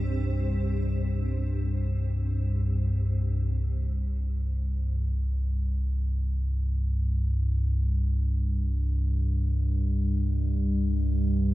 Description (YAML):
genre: dark ambient drone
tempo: free time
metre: none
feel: none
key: unclear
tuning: A4 = 444 Hz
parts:
  - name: granular cloud pad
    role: sustained chords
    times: 0.0-2.9 s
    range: C4 to C5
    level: -40 LUFS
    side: right 1 dB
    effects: built-in reverb
  - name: deep rumbling drone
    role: drone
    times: 0.0-11.5 s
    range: C2 to G2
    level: -25 LUFS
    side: equal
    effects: built-in reverb
room: light reverb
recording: none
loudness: -25 LUFS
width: side -17 dB against mid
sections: 0.0-2.9 A section; 2.9-11.5 B section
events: none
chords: 0.0 C5